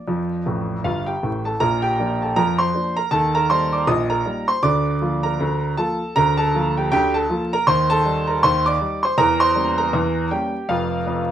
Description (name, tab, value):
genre	ragtime piano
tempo	79 BPM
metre	2/4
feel	swing 58% on 16ths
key	Bb major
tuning	A4 = 438 Hz
part	warm baby grand piano	solo	0.0-11.3 s	F1 to Eb6	-18 LUFS	right 1 dB	none
room	moderate studio reverb, RT60 0.6 s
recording	vinyl crackle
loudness	-18 LUFS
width	side -10 dB against mid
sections	0.0-1.6 A section; 1.6-11.3 B section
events	grand piano fill 0.5-1.6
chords	0.1 F; 1.6 Bb; 3.1 Eb; 4.6 Bb/D; 7.7 Cm/Eb; 9.2 Edim7; 10.7 N.C.